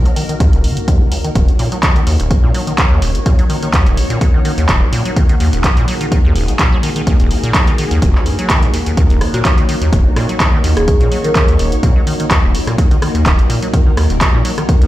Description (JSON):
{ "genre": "acid house", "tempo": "126 BPM", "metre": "4/4", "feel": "swing 54% on 16ths", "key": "Eb minor", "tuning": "A4 = 437 Hz", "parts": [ { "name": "string machine, full ensemble", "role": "sustained chords", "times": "0.0-14.9 s", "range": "Bb3 to Db5", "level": "-22 LUFS", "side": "left 1 dB", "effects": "ensemble chorus, sidechain pumping" }, { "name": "acid bass, square", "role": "riff", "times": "0.0-14.9 s", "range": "Eb1 to Gb3", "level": "-17 LUFS", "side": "equal", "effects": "none" }, { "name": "punchy analog drum machine", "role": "drums", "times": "0.1-14.9 s", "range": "handclaps, hi-hat, rim click", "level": "-20 LUFS", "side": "right 1 dB", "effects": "none" }, { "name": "electronic kick drum", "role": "drums", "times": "0.4-14.8 s", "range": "none", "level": "-13 LUFS", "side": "equal", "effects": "none" }, { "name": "marimba with medium hard mallets", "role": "melody", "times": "9.3-11.9 s", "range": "Gb4 to Bb4", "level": "-21 LUFS", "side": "equal", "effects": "ping-pong delay" } ], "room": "little or no reverb", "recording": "played on a big sound system in a bare room, large studio reverb", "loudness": "-11 LUFS", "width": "side -15 dB against mid", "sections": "0.0-14.9 A section", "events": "none", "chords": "0.0 Ebm7" }